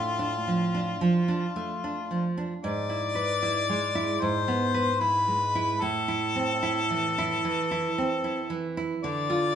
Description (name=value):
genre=romantic duo for harmonica and classical guitar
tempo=75 BPM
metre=4/4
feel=rubato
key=A minor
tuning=A4 = 440 Hz
part: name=warm harmonica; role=melody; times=0.0-9.6 s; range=F4 to D5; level=-28 LUFS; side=left 4 dB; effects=none
part: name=nylon-string guitar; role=accompaniment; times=0.0-9.6 s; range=G#2 to B4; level=-28 LUFS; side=right 3 dB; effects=none
room=wet large studio reverb, RT60 1.4 s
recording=band playing live in one room, nothing above 11.0 kHz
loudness=-25 LUFS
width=side -8 dB against mid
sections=0.0-9.6 A section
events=none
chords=0.0 Dm/A; 2.6 E7/G#; 5.8 Am; 9.0 Bdim/D (rootless)